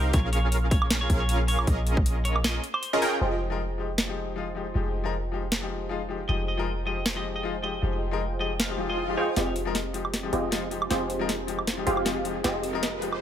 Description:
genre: future bass.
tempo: 156 BPM.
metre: 4/4.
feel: swing 55% on 16ths, half-time.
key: F minor.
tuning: A4 = 441 Hz.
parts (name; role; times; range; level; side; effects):
clean electric guitar; melody; 0.0-3.1, 6.3-9.3 s; Bb4 to F5; -34 LUFS; equal; sidechain pumping, digital delay.
supersaw stab; riff; 0.0-13.2 s; C4 to G5; -30 LUFS; right 1 dB; sidechain pumping, low-pass filter.
warm 808-style bass; bass; 0.0-13.2 s; F1 to C2; -30 LUFS; equal; tube saturation, sidechain pumping.
electronic kick drum; drums; 0.1-2.0 s; none; -24 LUFS; equal; overdrive.
trap drum kit; drums; 0.1-13.2 s; hi-hat, snare drum, woodblock; -29 LUFS; right 1 dB; overdrive.
bright grand piano; accompaniment; 3.2-13.1 s; F3 to Bb4; -32 LUFS; left 6 dB; sidechain pumping, digital delay.
swell and riser; sound effects; 8.7-13.2 s; none; -36 LUFS; right 1 dB; none.
room: light reverb, digital ambience.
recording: none.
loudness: -24 LUFS.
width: side -10 dB against mid.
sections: 0.0-3.2 A section; 3.2-9.4 B section; 9.4-13.2 C section.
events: drop 0.0-3.2; swell 8.7-9.4; build-up 9.4-13.2; drum fill 9.4-13.2; filter sweep on supersaw synth 9.4-13.2.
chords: 0.1 Bbm7; 3.2 Fm9.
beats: | 0.14 0.52 0.91 1.29 | 1.67 2.06 2.44 2.83 | 3.21 3.60 3.98 4.37 | 4.75 5.14 5.52 5.91 | 6.29 6.67 7.06 7.44 | 7.83 8.21 8.60 8.98 | 9.37 9.75 10.14 10.52 | 10.90 11.29 11.67 12.06 | 12.44 12.83 13.21.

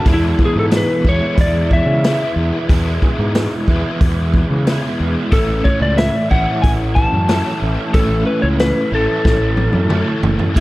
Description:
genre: psychedelic rock.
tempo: 91 BPM.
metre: 4/4.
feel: straight.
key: A major.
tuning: A4 = 440 Hz.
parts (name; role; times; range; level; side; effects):
electric slide guitar; melody; 0.0-10.6 s; E4 to A5; -20 LUFS; left 1 dB; dub echo.
overdriven electric guitar; riff; 0.0-10.6 s; A2 to E4; -19 LUFS; right 1 dB; rotary speaker, dub echo.
fuzz fingered electric bass; bass; 0.1-10.6 s; E1 to C#3; -19 LUFS; equal; overdrive.
vintage drum kit; drums; 0.1-10.6 s; crash cymbal, hi-hat, kick drum, snare drum, toms; -17 LUFS; equal; none.
room: studio reverb.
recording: echo-heavy mix.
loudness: -13 LUFS.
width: side -18 dB against mid.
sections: 0.1-10.6 A section.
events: drum fill 9.3-10.6.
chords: 0.1 E; 5.3 A.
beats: | 0.07 0.72 1.38 2.04 | 2.70 3.36 4.02 4.68 | 5.33 5.99 6.64 7.30 | 7.95 8.61 9.26 9.91 | 10.57.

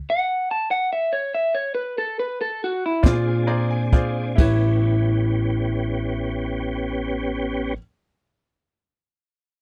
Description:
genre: slow blues.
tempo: 44-49 BPM (dotted quarters).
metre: 12/8.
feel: straight.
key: A mixolydian.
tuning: A4 = 440 Hz.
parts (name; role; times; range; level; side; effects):
electric guitar through a small old amp; melody; 0.1-7.8 s; E4 to A5; -26 LUFS; equal; slapback echo.
bright upright piano; accompaniment; 3.0-7.8 s; E4 to Bb5; -32 LUFS; equal; none.
tonewheel organ; sustained chords; 3.0-7.7 s; B3 to Ab4; -30 LUFS; equal; chorus vibrato, fast rotary speaker.
upright bass; bass; 3.0-7.7 s; A1 to Bb2; -26 LUFS; equal; none.
jazz brush drum kit; drums; 3.0-4.6 s; crash cymbal, hi-hat, kick drum, snare drum; -19 LUFS; equal; none.
room: little or no reverb.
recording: dry, close 1970s-style studio recording.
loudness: -23 LUFS.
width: mono.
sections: 0.0-4.4 A section; 4.4-9.6 B section.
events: slowing down 0.0-4.4; stop 0.0-3.0; upright piano fill 3.0-4.4.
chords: 0.0 N.C.; 3.0 Bb9; 4.4 A9.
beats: 0.48 1.74 3.04 | 4.38 5.75 7.12.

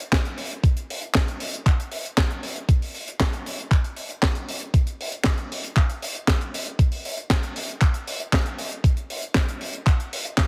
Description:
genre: italo disco.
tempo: 117 BPM.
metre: 4/4.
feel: straight.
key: none.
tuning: none.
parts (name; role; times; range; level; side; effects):
tight funk drum kit; drums; 0.0-10.5 s; handclaps, hi-hat, snare drum; -28 LUFS; equal; none.
electronic kick drum; drums; 0.1-10.5 s; none; -22 LUFS; equal; none.
room: light reverb.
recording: heavily compressed radio sound.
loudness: -24 LUFS.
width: mono.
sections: 0.0-10.5 A section.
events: none.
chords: none.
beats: 0.12 | 0.64 1.15 1.66 2.17 | 2.69 3.20 3.71 4.22 | 4.74 5.25 5.76 6.28 | 6.79 7.30 7.81 8.33 | 8.84 9.35 9.87 10.38.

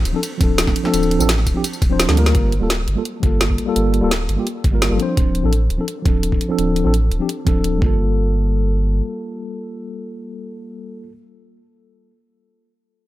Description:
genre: liquid drum and bass.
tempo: 170 BPM.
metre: 4/4.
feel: straight.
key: G minor.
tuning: A4 = 442 Hz.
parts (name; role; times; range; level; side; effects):
sub bass with octave; bass; 0.0-9.0 s; D1 to D2; -19 LUFS; equal; none.
mellow tine electric piano; accompaniment; 0.1-11.1 s; F3 to C5; -21 LUFS; equal; slow stereo tremolo, tape echo.
drum and bass drum kit; drums; 0.1-7.7 s; hi-hat, ride cymbal, snare drum, tambourine; -22 LUFS; equal; none.
electronic kick drum; drums; 0.4-7.9 s; none; -18 LUFS; equal; none.
room: light reverb.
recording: none.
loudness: -15 LUFS.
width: side -16 dB against mid.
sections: 0.0-2.3 A section; 2.3-8.0 B section; 8.0-10.8 C section.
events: drop 0.0-2.3; drum fill 2.1.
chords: 0.0 Dm7; 7.8 Gm9.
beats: 0.23 0.58 | 0.94 1.29 1.64 2.00 | 2.35 2.70 3.05 3.41 | 3.76 4.11 4.46 4.82 | 5.17 5.52 5.88 6.23 | 6.58 6.94 7.29 7.64 | 8.00 8.35 8.70 9.05 | 9.41 9.76 10.11 10.46.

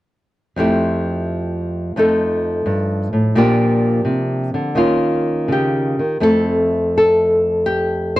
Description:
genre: solo jazz.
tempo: 85 BPM.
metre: 4/4.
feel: swing 69% on 8ths, rubato.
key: F major.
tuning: A4 = 440 Hz.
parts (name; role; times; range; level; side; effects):
nylon-string guitar; solo; 0.6-8.2 s; F2 to C5; -15 LUFS; equal; none.
room: moderate booth ambience, RT60 0.2 s.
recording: dry, close 1970s-style studio recording.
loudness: -15 LUFS.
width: side -16 dB against mid.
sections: 0.6-6.2 A section; 6.2-8.2 B section.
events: none.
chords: 0.6 Fmaj9; 2.0 F7; 3.4 Bb6; 4.8 Eb9; 6.2 Fmaj9.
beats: | 0.57 1.28 1.98 2.66 | 3.36 4.06 4.77 5.49 | 6.22 6.95 7.67.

